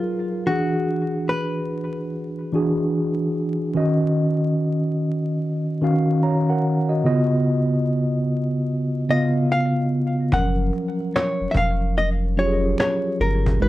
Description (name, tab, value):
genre	lo-fi hip hop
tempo	73 BPM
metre	4/4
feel	swing 63% on 16ths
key	F# major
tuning	A4 = 440 Hz
part	hollow-body jazz guitar	melody	0.0-2.9, 9.1-13.7 s	E#4 to F#5	-25 LUFS	left 1 dB	low-pass filter, analog delay
part	mellow tine electric piano	accompaniment	0.0-13.7 s	C#3 to A#5	-20 LUFS	equal	medium stereo tremolo, cassette tape, low-pass filter
part	saturated sub bass	bass	10.3-13.7 s	E#1 to G#1	-22 LUFS	equal	none
part	cajon	drums	10.3-13.7 s	none	-27 LUFS	equal	none
part	finger snap	percussion	11.2-13.0 s	none	-39 LUFS	right 3 dB	none
room	moderate studio reverb, RT60 0.6 s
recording	dark, warm production, vinyl crackle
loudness	-19 LUFS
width	side -16 dB against mid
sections	0.0-13.7 A section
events	none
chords	0.5 E9; 3.7 D#m7; 7.0 C#9; 10.3 F#maj7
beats	| 0.46 1.28 2.10 2.93 | 3.75 4.57 5.39 6.21 | 7.04 7.86 8.68 9.50 | 10.32 11.14 11.97 12.79 | 13.61